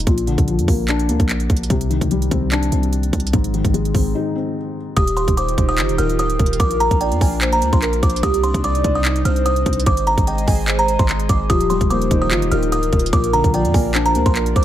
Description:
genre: hip hop, trap.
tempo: 147 BPM.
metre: 4/4.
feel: half-time.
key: unclear.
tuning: A4 = 439 Hz.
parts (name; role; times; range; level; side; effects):
felt-muted upright piano; accompaniment; 0.0-5.0, 11.5-14.6 s; Ab2 to F4; -21 LUFS; left 3 dB; none.
warm 808-style bass; bass; 0.0-14.6 s; D1 to F2; -20 LUFS; equal; none.
trap drum kit; drums; 0.0-14.6 s; handclaps, hi-hat, kick drum; -20 LUFS; equal; none.
buzzing kalimba; melody; 5.0-14.6 s; G5 to F6; -22 LUFS; right 1 dB; ping-pong delay.
hollow clarinet-like synth lead; second line; 5.0-14.6 s; G4 to Eb5; -23 LUFS; right 1 dB; chorus, phaser, ping-pong delay.
airy breathy pad; sustained chords; 5.0-14.6 s; C3 to Eb5; -26 LUFS; right 1 dB; chorus.
room: digital ambience.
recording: none.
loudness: -15 LUFS.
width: side -12 dB against mid.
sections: 0.0-5.0 A section; 5.0-14.6 B section.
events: break 4.2-5.0.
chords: 0.1 Bb; 1.7 Cmadd9; 3.3 Ab; 5.0 Ebadd9; 6.6 Bb; 8.2 Cmadd9; 9.9 Ab; 11.5 Ebadd9; 13.1 Bb.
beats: | 0.07 0.48 0.89 1.29 | 1.70 2.11 2.52 2.93 | 3.33 3.74 4.15 4.56 | 4.97 5.38 5.78 6.19 | 6.60 7.01 7.42 7.82 | 8.23 8.64 9.05 9.46 | 9.86 10.27 10.68 11.09 | 11.50 11.90 12.31 12.72 | 13.13 13.54 13.95 14.35.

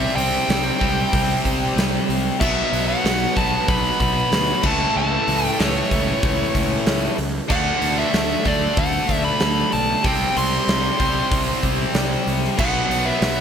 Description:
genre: hard rock.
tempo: 94 BPM.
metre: 4/4.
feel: straight.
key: unclear.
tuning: A4 = 440 Hz.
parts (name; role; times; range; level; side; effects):
nasal lead guitar with a parked wah; melody; 0.0-13.4 s; C#5 to C6; -23 LUFS; right 1 dB; overdrive, ping-pong delay.
analog string pad; sustained chords; 0.0-13.4 s; A3 to E5; -35 LUFS; equal; none.
distorted electric guitar; riff; 0.0-13.4 s; A2 to D4; -26 LUFS; right 10 dB; overdrive.
distorted electric guitar; riff; 0.0-13.4 s; A2 to D4; -28 LUFS; equal; overdrive.
tight distorted guitar; riff; 0.0-13.4 s; A2 to D4; -26 LUFS; left 11 dB; distortion.
fuzz fingered electric bass; bass; 0.0-13.4 s; B1 to D2; -26 LUFS; equal; overdrive.
huge arena drum kit; drums; 0.2-13.4 s; crash cymbal, hi-hat, kick drum, snare drum; -23 LUFS; equal; none.
room: moderate plate reverb, RT60 1.4 s, small room ambience.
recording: bright 1980s-style digital production.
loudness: -17 LUFS.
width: side -8 dB against mid.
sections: 0.0-13.4 A section.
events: none.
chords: 0.0 C5; 2.4 B5; 4.6 A/C#; 7.5 D5; 10.0 C5; 12.6 B5.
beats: 0.48 1.12 1.76 | 2.40 3.04 3.68 4.32 | 4.95 5.59 6.23 6.86 | 7.50 8.13 8.77 9.40 | 10.04 10.68 11.31 11.95 | 12.58 13.22.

